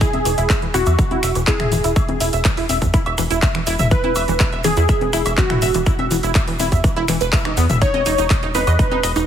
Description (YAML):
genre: progressive house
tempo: 123 BPM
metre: 4/4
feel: straight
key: E major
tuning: A4 = 442 Hz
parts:
  - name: plucky unison lead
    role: melody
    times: 0.0-9.2 s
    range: F#4 to C#5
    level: -23 LUFS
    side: right 1 dB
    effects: phaser, lush chorus, sidechain pumping, digital delay
  - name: soft synth bell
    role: second line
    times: 0.0-9.2 s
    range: F#4 to C#5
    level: -27 LUFS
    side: left 1 dB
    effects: chorus, sidechain pumping, dub echo
  - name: tight sequenced synth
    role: arpeggios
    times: 0.0-9.2 s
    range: E3 to E5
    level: -22 LUFS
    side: right 1 dB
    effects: chorus, phaser, sidechain pumping, dub echo
  - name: big-room dance drum kit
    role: drums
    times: 0.0-9.3 s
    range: finger snaps, handclaps, hi-hat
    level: -25 LUFS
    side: equal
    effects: overdrive, sidechain pumping on hats, studio reverb
  - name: electronic kick drum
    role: drums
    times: 0.0-8.9 s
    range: none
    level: -18 LUFS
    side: equal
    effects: overdrive, studio reverb
  - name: tube shaker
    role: percussion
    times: 0.0-9.3 s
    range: none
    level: -31 LUFS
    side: right 2 dB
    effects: none
  - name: tight sequencer bass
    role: bass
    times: 0.1-9.3 s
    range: E1 to E2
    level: -21 LUFS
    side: equal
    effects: tube saturation, sidechain pumping
  - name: electronic congas, woodblock and toms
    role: percussion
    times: 0.1-9.3 s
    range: none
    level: -26 LUFS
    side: left 3 dB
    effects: sidechain pumping on toms, studio reverb, sidechain pumping on perc
room: light reverb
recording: heavily compressed radio sound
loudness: -15 LUFS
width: side -9 dB against mid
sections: 0.0-9.3 A section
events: none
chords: 0.0 Emaj7